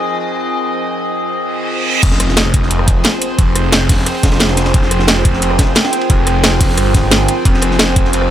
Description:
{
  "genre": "dark technical drum and bass",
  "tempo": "177 BPM",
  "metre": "4/4",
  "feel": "straight",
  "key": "F minor",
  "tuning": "A4 = 440 Hz",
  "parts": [
    { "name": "metallic inharmonic drone", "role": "sustained chords", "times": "0.0-8.3 s", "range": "F3 to F5", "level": "-19 LUFS", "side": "left 1 dB", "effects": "chorus, built-in reverb, sidechain pumping" },
    { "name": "warbly tape-like pad", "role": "texture", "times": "0.0-8.3 s", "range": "F4 to Ab5", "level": "-23 LUFS", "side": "right 4 dB", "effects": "chorus, built-in reverb, sidechain pumping" },
    { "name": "reverse cymbal and impact", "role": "sound effects", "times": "1.6-3.4 s", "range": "none", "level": "-20 LUFS", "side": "right 4 dB", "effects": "none" },
    { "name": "snarling distorted saw bass", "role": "bass", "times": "2.0-8.3 s", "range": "F1 to G1", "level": "-16 LUFS", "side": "equal", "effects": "distortion, overdrive, sidechain pumping" },
    { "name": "crunchy breakbeat drum kit", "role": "drums", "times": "2.0-8.2 s", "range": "hi-hat, ride cymbal, snare drum", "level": "-23 LUFS", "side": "equal", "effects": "high-pass filter on cymbals, high-pass filter on hats, high-pass filter on snare, high-pass filter on room" },
    { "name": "drum and bass drum kit", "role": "drums", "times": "2.0-8.3 s", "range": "crash cymbal, hi-hat, rim click, snare drum", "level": "-15 LUFS", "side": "equal", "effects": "none" },
    { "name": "electronic kick drum", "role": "drums", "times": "2.0-8.0 s", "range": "none", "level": "-13 LUFS", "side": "equal", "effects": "none" }
  ],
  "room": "light reverb",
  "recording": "none",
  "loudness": "-11 LUFS",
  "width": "side -11 dB against mid",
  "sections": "0.0-2.0 A section; 2.0-8.3 B section",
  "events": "reverse cymbal 1.6-2.0; drop 2.0-8.3; impact 2.0-3.4",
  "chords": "0.0 Fm"
}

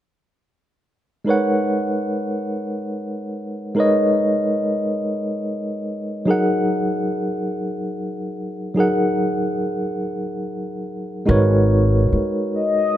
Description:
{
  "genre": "slow six-eight R&B",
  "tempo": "48 BPM (dotted quarters)",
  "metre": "6/8",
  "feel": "straight",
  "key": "G# minor",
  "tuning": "A4 = 440 Hz",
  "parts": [
    { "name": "tine electric piano", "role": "accompaniment", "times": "1.2-13.0 s", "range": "F#3 to F#5", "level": "-20 LUFS", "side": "equal", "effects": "medium tremolo" },
    { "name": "upright bass", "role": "bass", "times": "11.3-12.2 s", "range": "G#1", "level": "-16 LUFS", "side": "equal", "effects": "none" },
    { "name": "mellow horn-like synth lead", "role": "melody", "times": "12.5-13.0 s", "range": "D#5", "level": "-18 LUFS", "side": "left 5 dB", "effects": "chorus" }
  ],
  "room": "light reverb, studio ambience",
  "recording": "none",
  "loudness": "-19 LUFS",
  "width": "side -12 dB against mid",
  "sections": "1.3-11.3 A section; 11.3-13.0 B section",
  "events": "none",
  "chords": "1.3 G#m11; 6.3 F#69; 11.3 G#m11"
}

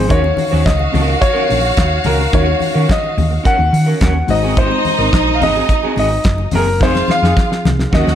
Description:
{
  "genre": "disco",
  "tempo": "108 BPM",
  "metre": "4/4",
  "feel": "straight",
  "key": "Eb dorian",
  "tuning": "A4 = 439 Hz",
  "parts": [
    { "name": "warm grand piano", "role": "melody", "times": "0.0-8.2 s", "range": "Bb4 to Gb5", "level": "-18 LUFS", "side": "left 1 dB", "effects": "none" },
    { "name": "electric guitar at the edge of break-up", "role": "accompaniment", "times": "0.0-8.1 s", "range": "C4 to C5", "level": "-23 LUFS", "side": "right 2 dB", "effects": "spring reverb" },
    { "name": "tine electric piano", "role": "accompaniment", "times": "0.0-8.2 s", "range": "Eb3 to Db5", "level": "-24 LUFS", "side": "left 3 dB", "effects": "phaser" },
    { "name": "hollow-body short-scale fingered electric bass", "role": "bass", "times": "0.0-8.2 s", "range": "F1 to Eb3", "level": "-16 LUFS", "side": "equal", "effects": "none" },
    { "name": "rich studio string section", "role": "second line", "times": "0.1-8.2 s", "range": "Eb4 to Gb5", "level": "-20 LUFS", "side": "right 1 dB", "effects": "none" },
    { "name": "damped 70s drum kit", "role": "drums", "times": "0.1-8.2 s", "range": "handclaps, hi-hat, kick drum, snare drum", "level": "-18 LUFS", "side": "equal", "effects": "none" },
    { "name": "congas", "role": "percussion", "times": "0.1-8.2 s", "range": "none", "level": "-25 LUFS", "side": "left 5 dB", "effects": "none" }
  ],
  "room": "light reverb",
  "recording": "none",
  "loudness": "-12 LUFS",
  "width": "side -10 dB against mid",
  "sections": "0.0-8.2 A section",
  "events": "drum fill 6.8-8.2",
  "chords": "0.1 Ebm7; 4.3 Ab7; 6.8 Fm7"
}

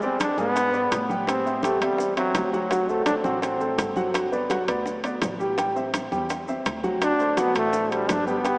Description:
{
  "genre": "latin, salsa",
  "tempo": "167 BPM",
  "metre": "4/4",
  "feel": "straight",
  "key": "unclear",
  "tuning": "A4 = 440 Hz",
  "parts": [
    { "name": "bright trombone", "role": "melody", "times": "0.0-3.9, 7.0-8.6 s", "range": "F#3 to D4", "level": "-24 LUFS", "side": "equal", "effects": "none" },
    { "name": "warm concert grand piano", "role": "accompaniment", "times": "0.0-8.6 s", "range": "F#3 to G#5", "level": "-26 LUFS", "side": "equal", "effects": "none" },
    { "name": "upright bass", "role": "bass", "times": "0.0-8.6 s", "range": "G1 to A2", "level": "-37 LUFS", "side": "equal", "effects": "none" },
    { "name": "bongos", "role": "percussion", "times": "0.0-8.6 s", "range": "none", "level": "-34 LUFS", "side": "left 1 dB", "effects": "none" },
    { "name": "congas", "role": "percussion", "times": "0.0-8.6 s", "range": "none", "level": "-37 LUFS", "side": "equal", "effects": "none" },
    { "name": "maracas", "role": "percussion", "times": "0.0-8.6 s", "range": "none", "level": "-45 LUFS", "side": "left 1 dB", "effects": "none" },
    { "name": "timbales", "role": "percussion", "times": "0.2-8.6 s", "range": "none", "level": "-31 LUFS", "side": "equal", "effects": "none" }
  ],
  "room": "wet cathedral reverb, RT60 5.3 s",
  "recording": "in a vast, echoing space, small speaker sound",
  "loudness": "-21 LUFS",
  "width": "side -27 dB against mid",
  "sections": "0.0-8.6 A section",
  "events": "none",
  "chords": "0.0 E7; 1.3 Am7; 2.7 D7; 4.1 Gmaj7; 5.6 Am7; 7.0 D7"
}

